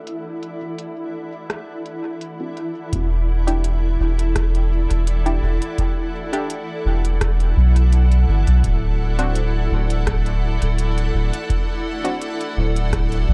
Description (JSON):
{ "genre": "ambient dub", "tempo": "84 BPM", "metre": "4/4", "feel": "swing 53% on 16ths", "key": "unclear", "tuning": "A4 = 440 Hz", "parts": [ { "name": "granular cloud pad", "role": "sustained chords", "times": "0.0-13.3 s", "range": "E4 to F#5", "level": "-30 LUFS", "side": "equal", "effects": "built-in reverb" }, { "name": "wind-like tuned noise texture", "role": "texture", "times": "0.0-2.9 s", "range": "E4 to E5", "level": "-45 LUFS", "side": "equal", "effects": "none" }, { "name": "organic electronic drum kit", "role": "drums", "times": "0.1-13.3 s", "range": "hi-hat, rim click", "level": "-34 LUFS", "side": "equal", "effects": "low-pass filter on hats, low-pass filter on snare, low-pass filter on room, dub echo" }, { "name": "filtered dub chord stab", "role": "stabs", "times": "0.6-12.3 s", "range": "C4 to G4", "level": "-32 LUFS", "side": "equal", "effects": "chorus, dub echo" }, { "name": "soft dub sub bass", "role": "bass", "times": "2.9-13.3 s", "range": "D1 to B1", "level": "-20 LUFS", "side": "equal", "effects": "none" }, { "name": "electronic kick drum", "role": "drums", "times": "2.9-13.1 s", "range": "none", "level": "-26 LUFS", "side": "equal", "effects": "none" } ], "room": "digital ambience", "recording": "dark, warm production", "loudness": "-20 LUFS", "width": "mono", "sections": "0.0-2.9 A section; 2.9-13.3 B section", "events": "none", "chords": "0.0 D7; 2.9 Em7; 8.6 D7", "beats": "| 0.07 0.78 1.50 2.21 | 2.93 3.64 4.35 5.07 | 5.78 6.50 7.21 7.93 | 8.64 9.35 10.07 10.78 | 11.50 12.21 12.93" }